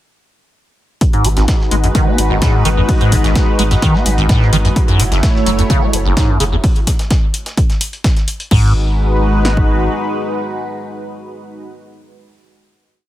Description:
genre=acid house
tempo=128 BPM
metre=4/4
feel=straight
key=G# phrygian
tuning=A4 = 441 Hz
part: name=lush unison pad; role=sustained chords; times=1.2-11.7 s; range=G#3 to C#5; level=-19 LUFS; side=equal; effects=chorus, phaser, sidechain pumping
part: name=dusty soul sampler-style drum kit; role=drums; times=1.0-8.5 s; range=hi-hat, snare drum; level=-28 LUFS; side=equal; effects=high-pass filter on hats, high-pass filter on snare
part: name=punchy analog drum machine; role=drums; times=1.0-9.7 s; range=kick drum, snare drum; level=-14 LUFS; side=equal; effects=none
part: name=punchy analog drum machine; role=drums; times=1.0-8.6 s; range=crash cymbal, hi-hat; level=-23 LUFS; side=left 2 dB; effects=none
part: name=liquid acid bass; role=riff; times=1.1-8.7 s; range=F#1 to B3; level=-15 LUFS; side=equal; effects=phaser, tube saturation, wide subtle chorus, sidechain pumping, tape echo
part: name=saturated sub bass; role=bass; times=1.2-9.9 s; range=F#1 to G#1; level=-16 LUFS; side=equal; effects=sidechain pumping
room=light reverb, digital ambience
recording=none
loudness=-11 LUFS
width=side -14 dB against mid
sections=1.0-8.5 groove; 8.5-12.3 final chord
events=none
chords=1.0 G#m7; 4.8 F#m7; 8.5 G#m7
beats=| 1.01 1.48 1.95 2.42 | 2.89 3.36 3.82 4.29 | 4.76 5.23 5.70 6.17 | 6.64 7.11 7.57 8.04 | 8.51 8.98 9.45 9.92 | 10.39 10.86 11.32

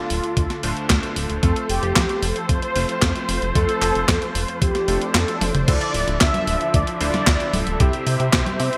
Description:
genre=italo disco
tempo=113 BPM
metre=4/4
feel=straight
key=D minor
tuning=A4 = 438 Hz
part: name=mellow synth brass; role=melody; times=0.0-8.8 s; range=F4 to E5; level=-27 LUFS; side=equal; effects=chorus, vintage 12-bit sampler grit, delay
part: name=muted studio string section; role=sustained chords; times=0.0-8.8 s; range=D3 to E5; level=-31 LUFS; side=equal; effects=none
part: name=warm electric grand piano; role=stabs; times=0.0-8.8 s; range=C3 to C5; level=-31 LUFS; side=equal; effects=analog chorus
part: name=chorused synth bass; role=bass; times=0.1-8.7 s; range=D1 to C3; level=-27 LUFS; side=equal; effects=none
part: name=clean 12-bit digital drum machine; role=drums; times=0.1-8.8 s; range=congas, crash cymbal, handclaps, hi-hat, snare drum, toms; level=-25 LUFS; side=equal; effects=studio reverb, gated reverb
part: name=electronic kick drum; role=drums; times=0.4-8.4 s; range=none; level=-23 LUFS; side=equal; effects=studio reverb
part: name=swell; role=sound effects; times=4.8-5.7 s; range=none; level=-38 LUFS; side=equal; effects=none
room=moderate plate reverb, RT60 2.1 s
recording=bright 1980s-style digital production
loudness=-20 LUFS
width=mono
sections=0.0-5.7 A section; 5.7-8.8 B section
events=swell 4.8-5.7; kick drops out 5.1-5.7; drum fill 5.4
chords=0.0 Dm; 1.4 F; 5.7 Dmadd9; 7.8 C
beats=0.37 0.90 | 1.43 1.96 2.49 3.02 | 3.55 4.08 4.62 5.15 | 5.68 6.21 6.74 7.27 | 7.80 8.33

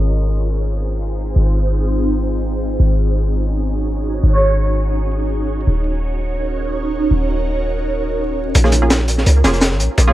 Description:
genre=drum and bass, jungle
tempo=167 BPM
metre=4/4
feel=straight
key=Bb minor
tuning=A4 = 436 Hz
part: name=ethereal airy pad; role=sustained chords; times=0.0-10.1 s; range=C4 to Db5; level=-22 LUFS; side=right 1 dB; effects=ensemble chorus, built-in reverb, phaser
part: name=warm 808-style bass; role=bass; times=0.0-10.1 s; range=Eb1 to Db2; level=-17 LUFS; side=equal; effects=none
part: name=breathy flute-like synth lead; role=melody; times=4.3-4.5, 10.1 s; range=Db5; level=-22 LUFS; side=right 1 dB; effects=lush chorus, dub echo
part: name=filtered dub chord stab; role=stabs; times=8.6-10.1 s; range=Bb3 to Ab4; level=-20 LUFS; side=right 2 dB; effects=chorus, dub echo
part: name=crunchy breakbeat drum kit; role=drums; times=8.6-10.1 s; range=hi-hat, kick drum, snare drum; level=-17 LUFS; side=equal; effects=high-pass filter on kick, high-pass filter on hats, high-pass filter on snare, high-pass filter on room
part: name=shaker and snare drum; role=drums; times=8.6-10.1 s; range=none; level=-26 LUFS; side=left 1 dB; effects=high-pass filter on snare, high-pass filter on perc, high-pass filter on room
room=small room ambience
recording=vinyl crackle, low-pass filter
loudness=-15 LUFS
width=side -15 dB against mid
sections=0.0-8.5 A section; 8.5-10.1 B section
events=filter sweep 0.0-8.5; build-up 8.5-10.1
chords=0.0 Fm7/Ab; 2.8 Ab7sus4; 5.7 Ebm7; 8.5 Bbm7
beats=0.28 0.64 1.00 | 1.36 1.72 2.08 2.44 | 2.80 3.16 3.52 3.88 | 4.24 4.59 4.96 5.31 | 5.67 6.03 6.39 6.75 | 7.11 7.47 7.83 8.19 | 8.55 8.91 9.27 9.62 | 9.98

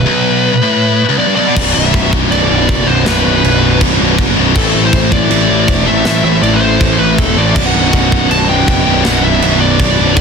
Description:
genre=heavy metal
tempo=160 BPM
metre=4/4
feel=straight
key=B phrygian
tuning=A4 = 438 Hz
part: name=high-gain lead guitar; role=melody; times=0.0-10.2 s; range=A4 to A5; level=-16 LUFS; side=left 1 dB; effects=distortion, ping-pong delay
part: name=heavy high-gain guitar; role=riff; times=0.0-10.2 s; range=B1 to A3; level=-15 LUFS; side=left 14 dB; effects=distortion
part: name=scooped high-gain guitar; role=riff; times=0.0-10.2 s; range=B1 to A3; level=-16 LUFS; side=right 12 dB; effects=distortion
part: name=fuzz picked electric bass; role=bass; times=0.0-10.2 s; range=B0 to A1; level=-15 LUFS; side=equal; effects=overdrive
part: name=sweeping resonant pad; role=sustained chords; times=1.6-10.2 s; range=F#3 to C5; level=-24 LUFS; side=right 2 dB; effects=none
part: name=tight metal drum kit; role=drums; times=1.6-10.2 s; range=china cymbal, crash cymbal, kick drum, snare drum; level=-15 LUFS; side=right 1 dB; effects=soft clipping on kick
room=small room ambience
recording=dense, heavily limited modern master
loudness=-9 LUFS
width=side -6 dB against mid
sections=0.0-1.6 A section; 1.6-10.2 B section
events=break 0.1-1.6; half time 1.6-10.2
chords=0.0 Bm; 4.6 Am; 7.6 Bm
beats=| 0.06 0.44 0.81 1.19 | 1.56 1.94 2.31 2.68 | 3.06 3.43 3.81 4.18 | 4.55 4.93 5.30 5.68 | 6.05 6.43 6.80 7.18 | 7.55 7.93 8.30 8.68 | 9.05 9.42 9.80 10.17

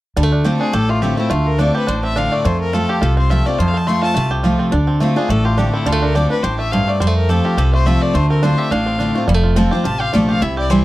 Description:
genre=bluegrass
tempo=211 BPM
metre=4/4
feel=swing 55% on 8ths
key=D minor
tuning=A4 = 440 Hz
part: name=bluegrass banjo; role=melody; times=0.2-10.8 s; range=G3 to G4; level=-23 LUFS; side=right 3 dB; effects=none
part: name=picked steel-string acoustic guitar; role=accompaniment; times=0.2-10.8 s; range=F2 to F4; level=-18 LUFS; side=equal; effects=none
part: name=upright bass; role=bass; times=0.2-10.8 s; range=F1 to F2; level=-18 LUFS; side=equal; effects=none
part: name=clear fiddle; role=melody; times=0.6-10.8 s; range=E4 to C6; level=-22 LUFS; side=left 3 dB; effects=none
room=little or no reverb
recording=dry, close 1970s-style studio recording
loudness=-14 LUFS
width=side -16 dB against mid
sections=0.2-9.3 A section; 9.3-10.8 B section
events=none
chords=0.2 Dm7; 2.4 F; 4.7 Dm7; 7.0 F; 8.1 Dm7; 9.3 F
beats=| 0.17 0.45 0.74 1.02 | 1.31 1.59 1.88 2.16 | 2.45 2.73 3.02 3.30 | 3.59 3.87 4.16 4.44 | 4.72 5.01 5.29 5.58 | 5.86 6.15 6.43 6.72 | 7.00 7.29 7.57 7.86 | 8.14 8.43 8.71 9.00 | 9.28 9.57 9.85 10.13 | 10.42 10.70

